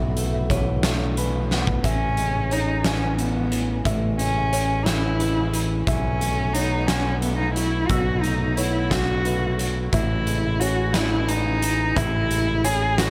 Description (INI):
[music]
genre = post-rock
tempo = 59 BPM (dotted quarters)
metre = 6/8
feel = straight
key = A lydian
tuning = A4 = 439 Hz
[part]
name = electric guitar through a small old amp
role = arpeggios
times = 0.0-13.1 s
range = A2 to C#4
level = -33 LUFS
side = equal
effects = tape echo
[part]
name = felt-muted upright piano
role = arpeggios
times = 0.0-13.1 s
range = B4 to E6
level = -36 LUFS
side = equal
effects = tape echo
[part]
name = modern bright fingered electric bass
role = bass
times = 0.0-13.1 s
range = A1 to B1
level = -27 LUFS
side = equal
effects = none
[part]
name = huge arena drum kit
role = drums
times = 0.2-13.1 s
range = hi-hat, kick drum, snare drum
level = -29 LUFS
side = equal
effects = none
[part]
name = dark cello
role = melody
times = 1.8-13.1 s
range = A3 to G#4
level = -27 LUFS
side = equal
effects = tape echo
[sound]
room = light reverb, studio reverb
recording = none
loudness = -22 LUFS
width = mono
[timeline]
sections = 0.0-1.8 A section; 1.8-13.1 B section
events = drum fill 1.5-1.8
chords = 0.0 B7sus4; 1.8 Amaj7; 5.9 B7sus4; 9.9 Amaj7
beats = 0.84 | 1.84 2.85 | 3.86 4.87 | 5.88 6.89 | 7.90 8.92 | 9.94 10.95 | 11.97 12.99